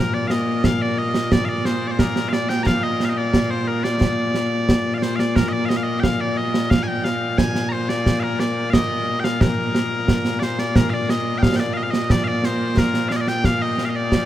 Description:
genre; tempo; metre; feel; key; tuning
scottish traditional, Scottish pipe music; 89 BPM; 2/4; straight; Bb major; A4 = 440 Hz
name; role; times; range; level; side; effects
loud bright bagpipes; melody; 0.0-14.3 s; Bb2 to Bb5; -21 LUFS; left 1 dB; none
concert snare drum and concert bass drum; drums; 0.3-14.3 s; none; -20 LUFS; right 1 dB; none
room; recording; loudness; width
moderate huge ambient reverb, RT60 7.5 s; heard from further back in the room; -18 LUFS; side -12 dB against mid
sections
0.0-10.8 A section; 10.8-14.3 A section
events
none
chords
none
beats
0.65 | 1.32 2.00 | 2.67 3.34 | 4.02 4.69 | 5.37 6.04 | 6.71 7.39 | 8.06 8.74 | 9.41 10.09 | 10.76 11.43 | 12.11 12.78 | 13.46 14.13

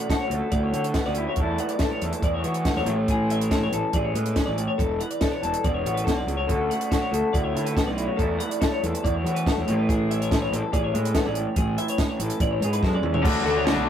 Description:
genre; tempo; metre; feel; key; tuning
math rock and midwest emo; 141 BPM; 4/4; straight; A major; A4 = 440 Hz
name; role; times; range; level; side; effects
electric guitar through a small old amp; accompaniment; 0.0-13.2 s; E2 to G#4; -29 LUFS; right 3 dB; none
twelve-string electric guitar; arpeggios; 0.0-13.9 s; G#4 to F#5; -28 LUFS; left 5 dB; none
compact cocktail drum kit; drums; 0.1-13.8 s; crash cymbal, hi-hat, kick drum, snare drum, toms; -26 LUFS; equal; none
fuzz fingered electric bass; bass; 0.3-13.9 s; E1 to E3; -27 LUFS; equal; overdrive
raw garage guitar; riff; 13.2-13.9 s; D3 to F#4; -24 LUFS; left 3 dB; overdrive
room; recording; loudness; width
light reverb; rough rehearsal-room recording; -22 LUFS; side -9 dB against mid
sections
0.0-13.2 A section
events
drum fill 12.8-13.2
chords
0.0 Dmaj7; 1.4 E7sus4; 2.9 Amaj7; 4.8 E7sus4; 6.5 Dmaj7; 8.2 E7sus4; 9.7 Amaj7; 13.2 D6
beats
0.09 0.52 0.95 | 1.37 1.80 2.23 2.65 | 3.08 3.51 3.93 4.36 | 4.79 5.21 5.64 6.06 | 6.49 6.91 7.33 7.76 | 8.18 8.61 9.03 9.45 | 9.88 10.30 10.72 11.14 | 11.57 11.99 12.41 12.83 | 13.25 13.67

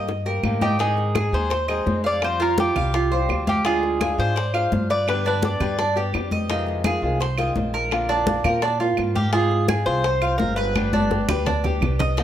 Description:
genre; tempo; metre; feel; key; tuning
latin, Cuban son and guajira; 169 BPM; 4/4; straight; unclear; A4 = 438 Hz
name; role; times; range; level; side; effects
flamenco guitar; accompaniment; 0.0-12.2 s; C3 to Ab4; -28 LUFS; left 2 dB; none
Cuban tres; arpeggios; 0.0-12.2 s; D4 to F5; -25 LUFS; right 3 dB; none
upright bass; bass; 0.0-12.2 s; G1 to Bb2; -26 LUFS; equal; none
bongos; percussion; 0.1-12.2 s; none; -32 LUFS; left 6 dB; none
congas; percussion; 0.1-12.2 s; none; -26 LUFS; left 1 dB; none
claves; percussion; 0.4-12.0 s; none; -32 LUFS; right 7 dB; none
Cuban tres; melody; 0.6-6.3, 9.2-11.8 s; G4 to D5; -25 LUFS; equal; plate reverb
room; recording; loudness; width
moderate studio reverb, RT60 0.9 s; none; -19 LUFS; side -11 dB against mid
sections
0.8-12.2 A section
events
drum fill 0.1-0.8, 10.8-12.2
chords
0.0 Cm7; 0.8 Ab; 2.2 Fsus2; 3.7 Ddim; 5.1 G; 6.5 Fm7; 7.9 Bbadd9; 9.3 Fm; 10.8 G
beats
0.08 0.44 | 0.80 1.15 1.51 1.87 | 2.23 2.58 2.94 3.29 | 3.65 4.01 4.36 4.72 | 5.07 5.43 5.79 6.14 | 6.50 6.85 7.21 7.56 | 7.92 8.27 8.63 8.98 | 9.34 9.69 10.05 10.40 | 10.76 11.11 11.47 11.82 | 12.18

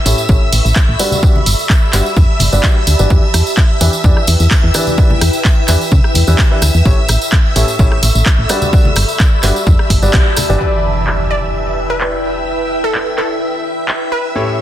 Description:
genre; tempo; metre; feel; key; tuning
piano house; 128 BPM; 4/4; straight; E dorian; A4 = 440 Hz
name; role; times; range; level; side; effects
string machine, violins; sustained chords; 0.0-14.6 s; E5 to E6; -22 LUFS; equal; ensemble chorus, sidechain pumping
ethereal airy pad; texture; 0.0-14.6 s; E4 to C#6; -22 LUFS; equal; ensemble chorus, built-in reverb, sidechain pumping
bright concert grand piano; riff; 0.1-14.6 s; A2 to E5; -20 LUFS; left 1 dB; sidechain pumping, low-pass filter, ping-pong delay
solid FM bass; bass; 0.1-10.6 s; G1 to C#3; -12 LUFS; equal; sidechain pumping
punchy analog drum machine; drums; 0.1-14.0 s; handclaps, hi-hat, rim click; -19 LUFS; equal; low-pass filter on hats, low-pass filter on snare, low-pass filter on cymbals
tambourine and congas; percussion; 0.1-10.6 s; none; -20 LUFS; equal; none
electronic kick drum; drums; 0.3-10.2 s; none; -11 LUFS; equal; none
impact; sound effects; 10.6-12.5 s; none; -20 LUFS; equal; none
glassy wavetable pluck; melody; 11.3-14.4 s; A4 to D5; -20 LUFS; right 1 dB; chorus, ping-pong delay
room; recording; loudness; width
light reverb; dense, heavily limited modern master; -10 LUFS; side -12 dB against mid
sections
0.0-10.6 A section; 10.6-14.6 B section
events
band accent 10.1; impact 10.6-12.5; filter sweep on drum 10.6-14.6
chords
0.0 A7; 1.0 Gmaj7; 3.1 Em7; 6.9 A7; 8.5 Gmaj7; 10.6 Em7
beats
0.29 0.76 | 1.23 1.70 2.17 2.64 | 3.10 3.57 4.04 4.51 | 4.98 5.45 5.92 6.39 | 6.86 7.32 7.79 8.26 | 8.73 9.20 9.67 10.14 | 10.61 11.07 11.54 12.01 | 12.48 12.95 13.42 13.89 | 14.36

